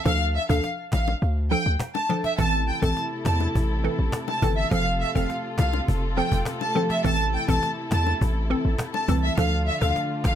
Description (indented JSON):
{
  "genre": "dancehall",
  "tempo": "103 BPM",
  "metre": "4/4",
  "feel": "straight",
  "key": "A minor",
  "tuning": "A4 = 440 Hz",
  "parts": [
    { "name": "warm symphonic violin section", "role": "melody", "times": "0.0-10.4 s", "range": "E5 to A5", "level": "-27 LUFS", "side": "equal", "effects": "tape echo" },
    { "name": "hollow square pluck", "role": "accompaniment", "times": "0.0-10.0 s", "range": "E3 to A4", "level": "-27 LUFS", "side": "right 1 dB", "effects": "chorus" },
    { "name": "hard-hitting 808-style bass", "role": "bass", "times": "0.1-10.4 s", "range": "F1 to E2", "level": "-24 LUFS", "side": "equal", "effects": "none" },
    { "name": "cajon", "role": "drums", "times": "0.1-10.4 s", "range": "none", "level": "-30 LUFS", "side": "equal", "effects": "none" },
    { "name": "bongos", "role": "percussion", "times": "0.9-9.2 s", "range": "none", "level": "-32 LUFS", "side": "left 9 dB", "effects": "none" },
    { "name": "dark studio string section", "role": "sustained chords", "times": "2.4-10.4 s", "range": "C3 to A4", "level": "-31 LUFS", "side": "left 1 dB", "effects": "none" }
  ],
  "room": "light reverb, studio ambience",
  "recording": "none",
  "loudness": "-21 LUFS",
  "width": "side -10 dB against mid",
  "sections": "0.0-10.4 A section",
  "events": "kick muted 1.2-2.4",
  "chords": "0.1 Dm; 2.4 Am; 4.7 F; 7.0 Am; 9.4 Dm"
}